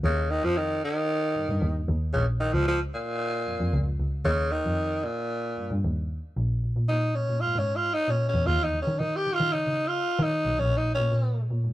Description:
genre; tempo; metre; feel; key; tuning
funk; 114 BPM; 4/4; straight; Bb dorian; A4 = 440 Hz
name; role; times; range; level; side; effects
growling tenor saxophone; melody; 0.0-11.4 s; Bb2 to G4; -26 LUFS; equal; none
warm double bass; bass; 0.0-11.7 s; Bb1 to D#3; -26 LUFS; equal; none
room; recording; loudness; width
small room ambience; dry, close 1970s-style studio recording; -24 LUFS; side -15 dB against mid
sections
0.0-6.4 A section; 6.4-11.7 B section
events
tenor saxophone solo 6.4-11.7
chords
0.0 Eb; 2.1 Bbm; 4.3 Eb; 6.4 Bbmadd11; 8.5 Badd9 (rootless); 10.6 Bbm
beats
| 0.04 0.56 1.09 1.62 | 2.14 2.67 3.20 3.73 | 4.25 4.78 5.31 5.83 | 6.36 6.89 7.42 7.95 | 8.47 9.00 9.53 10.05 | 10.58 11.11 11.64

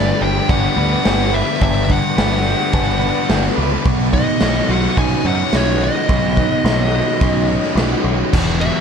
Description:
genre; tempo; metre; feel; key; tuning
rock, shoegaze and dream pop; 107 BPM; 4/4; straight; unclear; A4 = 441 Hz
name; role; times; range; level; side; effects
fuzz lead guitar; melody; 0.0-8.8 s; C#5 to G#5; -22 LUFS; left 1 dB; distortion, slapback echo
phased string machine; sustained chords; 0.0-8.8 s; G4 to D6; -26 LUFS; equal; ensemble chorus, phaser
fuzz guitar; riff; 0.0-8.8 s; G2 to D#4; -21 LUFS; left 13 dB; distortion, wide subtle chorus
raw garage guitar; riff; 0.0-8.8 s; E2 to C#5; -22 LUFS; right 12 dB; overdrive, reverse reverb
growling picked electric bass; bass; 0.0-8.7 s; E1 to F#2; -20 LUFS; equal; overdrive
raw garage drum kit; drums; 0.5-8.7 s; crash cymbal, kick drum, snare drum; -20 LUFS; equal; none
room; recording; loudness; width
small room ambience; none; -14 LUFS; side -7 dB against mid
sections
0.0-8.3 A section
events
none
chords
0.0 G; 3.9 Badd9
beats
0.50 1.06 | 1.62 2.18 2.74 3.30 | 3.86 4.42 4.98 5.54 | 6.10 6.66 7.22 7.78 | 8.34

